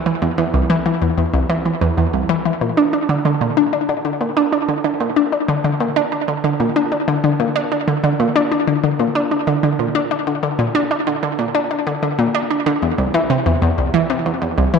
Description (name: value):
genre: ambient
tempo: 94 BPM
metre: 4/4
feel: straight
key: unclear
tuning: A4 = 440 Hz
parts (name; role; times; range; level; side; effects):
- analog pluck; solo; 0.1-14.8 s; C2 to D4; -15 LUFS; equal; chorus, analog delay
room: wet spring reverb, RT60 2.3 s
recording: echo-heavy mix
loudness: -15 LUFS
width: side -6 dB against mid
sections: 0.0-2.6 A section; 2.6-14.8 B section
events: none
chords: none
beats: | 0.06 0.70 1.33 1.97 | 2.61 3.25 3.89 4.53 | 5.17 5.80 6.44 7.08 | 7.72 8.36 8.99 9.63 | 10.27 10.91 11.55 12.19 | 12.82 13.46 14.10 14.74